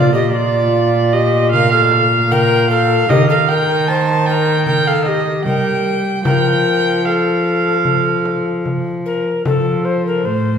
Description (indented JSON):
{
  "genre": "classical, renaissance-style consort dance",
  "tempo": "76 BPM",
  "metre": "4/4",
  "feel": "straight",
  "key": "F mixolydian",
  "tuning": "A4 = 439 Hz",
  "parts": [
    { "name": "mellow tenor recorder", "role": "melody", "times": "0.0-10.6 s", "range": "F4 to C5", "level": "-19 LUFS", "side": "left 4 dB", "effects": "none" },
    { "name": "warm viola", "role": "second line", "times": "0.0-10.6 s", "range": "A4 to A5", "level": "-17 LUFS", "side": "right 3 dB", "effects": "none" },
    { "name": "warm cello", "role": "bass", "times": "0.0-10.6 s", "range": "A2 to G3", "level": "-18 LUFS", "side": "right 1 dB", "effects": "none" },
    { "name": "frame drum", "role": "percussion", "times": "1.5-9.8 s", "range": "none", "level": "-21 LUFS", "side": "equal", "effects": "none" }
  ],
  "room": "wet recital hall reverb, RT60 1.6 s",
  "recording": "heard from further back in the room",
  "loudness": "-13 LUFS",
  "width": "side -7 dB against mid",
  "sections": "0.0-9.4 A section; 9.4-10.6 B section",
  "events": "none",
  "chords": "0.0 Bb; 3.1 Eb; 6.2 F"
}